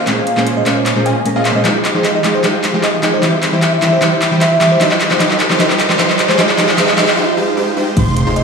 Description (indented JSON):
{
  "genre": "future bass",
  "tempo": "152 BPM",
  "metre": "4/4",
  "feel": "half-time",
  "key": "F minor",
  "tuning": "A4 = 440 Hz",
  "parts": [
    { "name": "bell-like FM electric piano", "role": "melody", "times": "0.0-8.4 s", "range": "C5 to Ab5", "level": "-18 LUFS", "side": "equal", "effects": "chorus, sidechain pumping, tape echo" },
    { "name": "supersaw stab", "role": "riff", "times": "0.0-8.4 s", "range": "G3 to E5", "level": "-16 LUFS", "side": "equal", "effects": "sidechain pumping, low-pass filter, digital delay" },
    { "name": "mellow electric guitar", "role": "accompaniment", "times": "0.1-7.1 s", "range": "Bb2 to C5", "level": "-17 LUFS", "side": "right 1 dB", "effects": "tremolo, sidechain pumping, digital delay" },
    { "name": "pop drum kit", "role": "drums", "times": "0.1-8.4 s", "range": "crash cymbal, handclaps, hi-hat", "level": "-17 LUFS", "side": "left 1 dB", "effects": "overdrive, high-pass filter on snare, high-pass filter on hats, high-pass filter on cymbals, high-pass filter on room" },
    { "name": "riser and sub drop", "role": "sound effects", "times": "3.0-8.4 s", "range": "none", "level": "-23 LUFS", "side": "equal", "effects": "none" },
    { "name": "airy dreamy lead", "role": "arpeggios", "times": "8.0-8.4 s", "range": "C6", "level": "-22 LUFS", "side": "right 1 dB", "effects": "chorus, vintage 12-bit sampler grit, sidechain pumping" },
    { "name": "saturated sub bass", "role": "bass", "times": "8.0-8.4 s", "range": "F1", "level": "-16 LUFS", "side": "right 1 dB", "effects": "sidechain pumping" },
    { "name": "electronic kick drum", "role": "drums", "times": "8.0-8.1 s", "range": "none", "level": "-15 LUFS", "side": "left 1 dB", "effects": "overdrive" }
  ],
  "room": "wet digital room reverb, RT60 1.0 s, digital ambience",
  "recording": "played on a big sound system in a bare room, large studio reverb, studio reverb",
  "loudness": "-11 LUFS",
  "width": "side -5 dB against mid",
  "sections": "0.0-8.0 A section",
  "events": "build-up 0.0-8.0; drum fill 0.0-7.2; break 7.2-8.0; impact 8.0-8.4",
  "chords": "0.0 Bbm9; 1.7 Fm9; 3.2 C; 4.8 Eb; 6.2 Fm9"
}